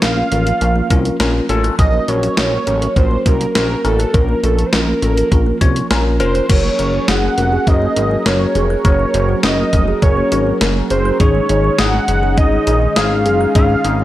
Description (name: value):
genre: synth-pop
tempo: 102 BPM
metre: 4/4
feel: straight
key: Bb harmonic minor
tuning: A4 = 441 Hz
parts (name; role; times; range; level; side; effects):
- fat analog lead; melody; 0.0-14.0 s; A4 to Gb5; -19 LUFS; right 2 dB; slapback echo
- tine electric piano; accompaniment; 0.0-14.0 s; Db4 to Bb5; -20 LUFS; left 5 dB; phaser
- kalimba; arpeggios; 0.0-14.0 s; Eb3 to Gb6; -23 LUFS; right 3 dB; slapback echo
- chorused synth bass; bass; 0.0-14.0 s; F1 to C2; -18 LUFS; equal; none
- gated 80s digital drum machine; drums; 0.0-14.0 s; crash cymbal, hi-hat, kick drum, snare drum; -16 LUFS; equal; gated reverb, gated reverb snare
- chorused pulse-width pad; sustained chords; 6.5-14.0 s; Gb3 to Bb4; -24 LUFS; equal; none
room: light reverb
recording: none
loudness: -12 LUFS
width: side -14 dB against mid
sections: 0.0-6.5 A section; 6.5-14.0 B section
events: tine electric piano fill 5.6-6.5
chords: 0.0 Bbm; 1.8 Gb; 4.1 Bbm; 6.5 Gbadd9; 11.2 Absus4